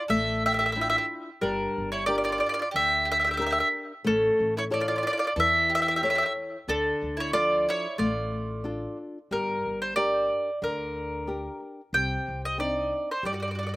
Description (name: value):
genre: italian folk, Italian serenade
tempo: 91 BPM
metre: 4/4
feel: swing 54% on 8ths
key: D harmonic minor, G harmonic minor from 9.3 s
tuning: A4 = 440 Hz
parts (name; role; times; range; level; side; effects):
- mandolin; melody; 0.0-13.8 s; A4 to G5; -25 LUFS; equal; none
- bowl-back mandolin; second line; 0.0-9.0, 13.3-13.8 s; C#4 to A4; -36 LUFS; right 3 dB; slapback echo
- flamenco guitar; accompaniment; 0.1-13.8 s; C3 to C#5; -32 LUFS; left 2 dB; none
- upright bass; bass; 0.1-13.8 s; G1 to G2; -36 LUFS; equal; none
room: little or no reverb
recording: recorded outdoors, with no room sound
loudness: -24 LUFS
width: side -20 dB against mid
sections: 0.0-9.3 A section; 9.3-13.8 B section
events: none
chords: 0.0 Dmadd9; 1.4 Gm; 4.1 A; 6.7 Dm; 9.3 Gm; 11.9 Cmadd9